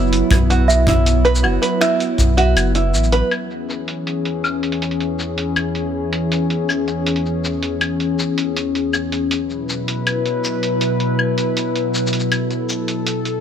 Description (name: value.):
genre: folktronica.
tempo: 80 BPM.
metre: 4/4.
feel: straight.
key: E major.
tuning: A4 = 440 Hz.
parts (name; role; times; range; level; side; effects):
small celesta; second line; 0.0-3.3 s; E5; -23 LUFS; right 2 dB; tape echo.
warbly tape-like pad; sustained chords; 0.0-13.4 s; E2 to B4; -19 LUFS; left 1 dB; chorus, built-in reverb.
open-back banjo; arpeggios; 0.0-3.3 s; E4 to B4; -21 LUFS; right 2 dB; tape echo.
warm sub bass; bass; 0.0-3.2 s; F#1 to B1; -16 LUFS; equal; none.
lo-fi sampler-style drum kit; drums; 0.0-13.4 s; cabasa, claves, finger snaps, hi-hat; -23 LUFS; left 1 dB; low-pass filter on snare, low-pass filter on hats, low-pass filter on perc.
kick drum; drums; 0.3-2.3 s; none; -19 LUFS; equal; none.
room: light reverb, small room ambience.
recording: none.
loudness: -16 LUFS.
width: side -8 dB against mid.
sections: 0.0-3.3 A section; 3.3-13.4 B section.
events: kick drops out 2.6-3.3.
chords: 0.0 Bsus4; 3.3 E6; 9.3 Bsus4.